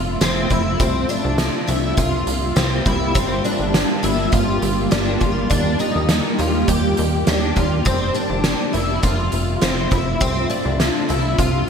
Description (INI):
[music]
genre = dream pop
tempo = 102 BPM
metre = 4/4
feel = straight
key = F major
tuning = A4 = 440 Hz
[part]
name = shimmering ambient pad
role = sustained chords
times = 0.0-11.7 s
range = C3 to E5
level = -23 LUFS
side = right 1 dB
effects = chorus, built-in reverb
[part]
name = picked twelve-string acoustic guitar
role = arpeggios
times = 0.0-11.7 s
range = C4 to G4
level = -22 LUFS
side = left 2 dB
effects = ensemble chorus, ping-pong delay
[part]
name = plucky analog bass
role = bass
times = 0.0-11.6 s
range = F1 to Eb2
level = -23 LUFS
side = equal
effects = none
[part]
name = oversized low-tuned drum kit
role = drums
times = 0.2-11.5 s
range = hi-hat, kick drum, snare drum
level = -22 LUFS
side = right 1 dB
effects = none
[sound]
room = wet lush hall reverb, RT60 2.5 s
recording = bright 1980s-style digital production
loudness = -16 LUFS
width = side -6 dB against mid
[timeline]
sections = 0.0-11.7 A section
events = none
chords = 0.0 Fmaj7; 0.8 C7sus4; 3.2 Gm7; 5.5 Ebmaj7; 7.9 Fmaj7; 10.2 C7sus4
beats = 0.21 | 0.80 1.39 1.98 2.56 | 3.15 3.74 4.33 4.92 | 5.50 6.09 6.68 7.27 | 7.86 8.45 9.03 9.62 | 10.21 10.80 11.39